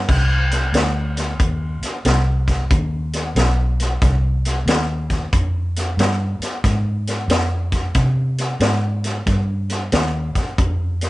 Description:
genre	electric blues shuffle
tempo	92 BPM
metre	4/4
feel	swing 65% on 8ths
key	C harmonic minor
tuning	A4 = 440 Hz
part	vintage muted fingered electric bass	bass	0.0-11.1 s	B1 to C3	-19 LUFS	equal	none
part	vintage drum kit	drums	0.1-11.1 s	crash cymbal, hi-hat, kick drum, snare drum	-20 LUFS	equal	none
room	moderate small room reverb, RT60 0.5 s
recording	band playing live in one room, nothing above 10.4 kHz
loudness	-17 LUFS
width	side -18 dB against mid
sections	0.1-11.1 A section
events	none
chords	none

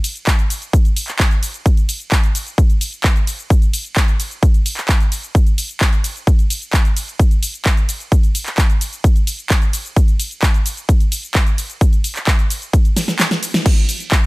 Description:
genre	EDM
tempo	130 BPM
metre	4/4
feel	straight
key	none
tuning	none
part	big-room dance drum kit	drums	0.0-14.3 s	crash cymbal, handclaps, hi-hat, ride cymbal, shaker, snare drum	-20 LUFS	equal	none
part	electronic kick drum	drums	0.3-14.2 s	none	-13 LUFS	equal	none
room	little or no reverb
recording	none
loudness	-14 LUFS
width	side -22 dB against mid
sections	0.0-13.7 A section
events	drop 0.0-13.7; drum fill 13.0-13.7; kick drops out 13.2-13.7; band accent 13.5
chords	none

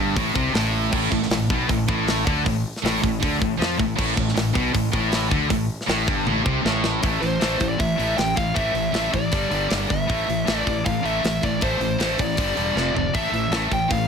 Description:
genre	heavy metal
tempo	157 BPM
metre	4/4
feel	straight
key	A minor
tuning	A4 = 440 Hz
part	fuzz guitar	riff	0.0-7.0 s	G2 to F3	-28 LUFS	right 1 dB	distortion
part	heavy high-gain guitar	riff	0.0-14.1 s	F2 to A3	-26 LUFS	left 13 dB	distortion
part	scooped high-gain guitar	riff	0.0-14.1 s	F2 to A3	-26 LUFS	right 13 dB	distortion
part	fuzz fingered electric bass	bass	0.0-14.1 s	E1 to F2	-28 LUFS	equal	overdrive
part	tight metal drum kit	drums	0.2-14.0 s	crash cymbal, hi-hat, kick drum, snare drum, toms	-26 LUFS	equal	none
part	high-gain lead guitar	melody	7.2-14.1 s	C5 to G5	-25 LUFS	left 1 dB	distortion
room	little or no reverb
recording	none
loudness	-19 LUFS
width	side -6 dB against mid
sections	0.0-7.0 A section; 7.0-14.1 B section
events	drum fill 6.3-7.0, 12.8-13.1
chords	0.0 Am; 7.0 A5; 9.3 G5; 10.1 Am; 12.4 G5; 12.8 F5; 13.1 A5

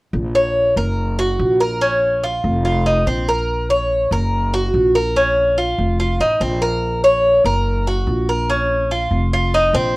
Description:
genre	latin, Cuban son and guajira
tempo	144 BPM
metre	4/4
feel	straight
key	Bb minor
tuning	A4 = 440 Hz
part	upright bass	bass	0.1-10.0 s	F1 to Bb1	-20 LUFS	equal	none
part	Cuban tres	arpeggios	0.3-9.9 s	C4 to Db5	-16 LUFS	equal	none
room	light reverb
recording	worn, warbling old tape, cassette tape, warbly pitch drift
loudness	-15 LUFS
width	side -22 dB against mid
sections	0.1-10.0 A section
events	none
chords	0.1 Bbm; 1.0 Gb; 1.8 Bbm; 2.6 F5; 3.5 Bbm; 4.3 Gb; 5.2 Bbm; 6.0 F7; 6.8 Bbm; 7.7 Gb; 8.5 Bbm; 9.3 F5

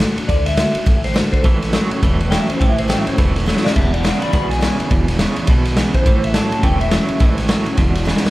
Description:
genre	rockabilly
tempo	208 BPM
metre	4/4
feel	swing 60% on 8ths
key	A major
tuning	A4 = 440 Hz
part	picked steel-string acoustic guitar	accompaniment	0.0-8.3 s	E2 to F#4	-23 LUFS	left 2 dB	none
part	upright bass	bass	0.0-8.3 s	E1 to D2	-21 LUFS	equal	none
part	raw garage drum kit	drums	0.0-8.3 s	crash cymbal, kick drum, ride cymbal, snare drum	-17 LUFS	equal	none
part	electric guitar through a small old amp	melody	0.3-7.4 s	G4 to B5	-23 LUFS	left 1 dB	analog chorus, analog delay
part	electric guitar at the edge of break-up	riff	1.4-8.3 s	E2 to F#3	-22 LUFS	right 4 dB	tremolo
room	light reverb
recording	none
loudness	-14 LUFS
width	side -18 dB against mid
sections	0.0-8.3 A section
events	clean electric guitar solo 0.0-8.3; drum fill 3.5, 8.1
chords	0.0 D; 1.4 A; 3.8 E; 6.1 A; 7.8 E

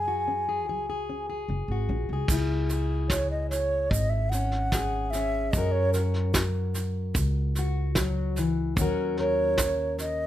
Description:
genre	acoustic folk duo or small band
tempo	74 BPM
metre	4/4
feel	straight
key	C# dorian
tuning	A4 = 440 Hz
part	baroque flute	melody	0.0-10.3 s	A#4 to G#5	-28 LUFS	right 1 dB	none
part	fingerpicked plugged-in steel-string acoustic guitar	accompaniment	0.0-10.3 s	G#2 to A#4	-31 LUFS	left 3 dB	none
part	upright bass	bass	0.0-10.3 s	F#1 to F#2	-28 LUFS	equal	none
part	soft brush drum kit	drums	2.3-10.1 s	crash cymbal, kick drum, snare drum	-29 LUFS	equal	none
part	egg shaker	percussion	2.3-10.2 s	none	-37 LUFS	right 6 dB	none
room	light reverb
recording	close, detailed microphones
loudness	-24 LUFS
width	side -12 dB against mid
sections	0.0-2.3 A section; 2.3-10.3 B section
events	flute solo 2.3-10.3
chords	0.0 F#sus2; 2.3 C#m; 5.5 F#; 8.8 D#m7

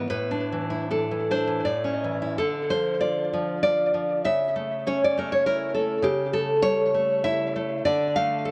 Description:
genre	romantic piece for solo classical guitar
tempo	74-104 BPM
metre	3/4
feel	rubato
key	D minor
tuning	A4 = 440 Hz
part	nylon-string guitar	solo	0.0-8.5 s	A2 to F5	-25 LUFS	equal	tape echo
room	moderate spring reverb, RT60 2.1 s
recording	echo-heavy mix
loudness	-25 LUFS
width	mono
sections	0.0-2.4 A section; 2.4-8.5 B section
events	none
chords	0.1 Asus4; 1.6 A; 2.4 Dm; 4.2 A/C#; 6.1 A7/C#; 7.9 Dm

